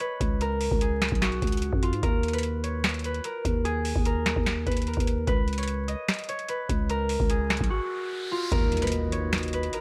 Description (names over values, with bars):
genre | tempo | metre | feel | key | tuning
hip hop, trap | 148 BPM | 4/4 | half-time | Eb minor | A4 = 440 Hz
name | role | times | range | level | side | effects
concert harp | melody | 0.0-9.8 s | F4 to Eb5 | -33 LUFS | equal | low-pass filter
booming analog drum machine | drums | 0.0-9.8 s | finger snaps, hi-hat, kick drum, snare drum | -30 LUFS | equal | none
growling 808-style bass | bass | 0.2-9.7 s | Cb2 to Ab2 | -31 LUFS | equal | none
riser and impact | sound effects | 7.6-9.8 s | none | -38 LUFS | equal | none
glass harmonica | sustained chords | 8.5-9.8 s | Eb4 to Eb5 | -38 LUFS | equal | none
room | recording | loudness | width
little or no reverb | vinyl crackle | -27 LUFS | mono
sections
0.0-8.5 A section; 8.5-9.8 B section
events
riser 7.6-8.5; break 7.7-8.5; impact 8.5-9.8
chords
0.0 Db5; 2.0 Eb5; 5.3 Db5; 8.5 Ebm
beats
0.00 | 0.41 0.81 1.22 1.62 | 2.03 2.44 2.84 3.25 | 3.65 4.06 4.46 4.87 | 5.27 5.68 6.08 6.49 | 6.89 7.30 7.71 8.11 | 8.52 8.92 9.33 9.73